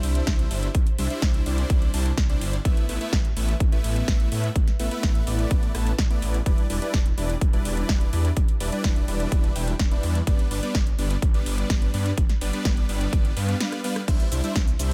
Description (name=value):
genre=EDM, festival progressive house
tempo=126 BPM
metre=4/4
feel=straight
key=A minor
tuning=A4 = 440 Hz
part: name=supersaw chords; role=riff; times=0.0-14.9 s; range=G3 to A5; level=-32 LUFS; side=equal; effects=sidechain pumping, dub echo
part: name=detuned saw bass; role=bass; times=0.0-14.9 s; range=E1 to A2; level=-29 LUFS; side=equal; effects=chorus, sidechain pumping
part: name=big-room dance drum kit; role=drums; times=0.0-14.9 s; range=cabasa, crash cymbal, hi-hat, ride cymbal, rim click, snare drum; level=-34 LUFS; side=equal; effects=none
part: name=electronic kick drum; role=drums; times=0.3-14.7 s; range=none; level=-24 LUFS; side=equal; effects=none
room=little or no reverb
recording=none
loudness=-23 LUFS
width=mono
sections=0.0-14.9 A section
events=break 13.6-14.1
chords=0.0 Cadd9; 2.7 Asus2; 6.5 Em7; 10.3 G; 14.1 Cadd9